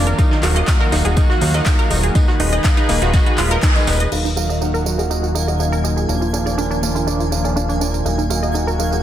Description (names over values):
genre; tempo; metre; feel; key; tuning
progressive house; 122 BPM; 4/4; straight; Eb harmonic minor; A4 = 436 Hz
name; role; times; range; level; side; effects
lush unison pad; sustained chords; 0.0-9.0 s; Eb3 to Cb5; -24 LUFS; equal; chorus, vintage 12-bit sampler grit, sidechain pumping
clear grand piano; stabs; 0.0-9.0 s; F3 to Ab5; -24 LUFS; right 2 dB; sidechain pumping, low-pass filter, tape echo
fat analog bass; bass; 0.0-9.0 s; Eb1 to Eb2; -20 LUFS; equal; sidechain pumping
wide unison pluck; arpeggios; 0.1-9.0 s; Eb3 to Eb5; -23 LUFS; right 1 dB; sidechain pumping, tape echo
deep house drum kit; drums; 0.1-9.0 s; crash cymbal, handclaps, hi-hat, tambourine; -25 LUFS; right 1 dB; studio reverb
electronic kick drum; drums; 0.2-3.7 s; none; -15 LUFS; equal; studio reverb
vintage brush drum kit; drums; 0.2-4.1 s; hi-hat, snare drum, tambourine; -30 LUFS; equal; high-pass filter on hats, studio reverb, soft clipping on snare, high-pass filter on snare, high-pass filter on perc, high-pass filter on room
twinkling granular texture; texture; 4.6-9.0 s; Ab5; -32 LUFS; right 2 dB; built-in reverb, sidechain pumping
room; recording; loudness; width
light reverb, studio reverb; dense, heavily limited modern master; -15 LUFS; side -11 dB against mid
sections
0.0-4.1 A section; 4.1-9.0 B section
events
band accent 3.6; filter sweep on synth pluck 4.1-9.0; filter sweep on analog synth pad 4.1-9.0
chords
0.2 Ebmadd9; 2.2 Abm/Eb; 4.1 Ebmadd9; 6.1 Bb/Eb; 8.1 Ebmadd9